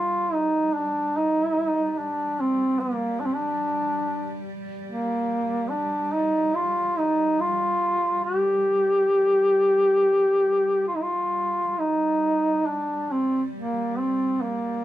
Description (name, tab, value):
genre	caucasian folk, Caucasian lament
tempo	65-75 BPM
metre	4/4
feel	rubato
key	G minor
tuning	A4 = 441 Hz
part	mellow duduk	melody	0.0-14.8 s	Bb3 to G4	-21 LUFS	equal	none
part	dark chamber cello section	drone	0.0-14.8 s	G3	-36 LUFS	equal	none
room	moderate small room reverb, RT60 0.5 s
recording	band playing live in one room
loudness	-21 LUFS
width	side -13 dB against mid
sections	0.0-11.8 A section; 11.8-14.8 B section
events	none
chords	none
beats	0.72 | 1.56 2.39 3.20 4.02 | 4.86 5.69 6.54 7.39 | 8.24 9.11 9.98 10.87 | 11.77 12.65 13.53 14.40